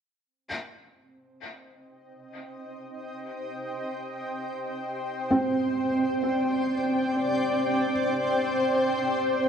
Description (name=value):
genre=ambient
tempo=free time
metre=none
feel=none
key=C minor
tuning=A4 = 440 Hz
part: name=granular cloud pad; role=sustained chords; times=2.3-9.5 s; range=C4 to G5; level=-27 LUFS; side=equal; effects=built-in reverb
part: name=felt-muted upright piano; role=arpeggios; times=5.3-9.5 s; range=C4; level=-28 LUFS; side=right 1 dB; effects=tape echo
room=wet echo chamber reverb, RT60 1.3 s, small room ambience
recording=none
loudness=-25 LUFS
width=side -7 dB against mid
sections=0.3-9.5 A section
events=fade-in on ambient pad 0.3-9.5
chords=0.3 Cm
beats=free time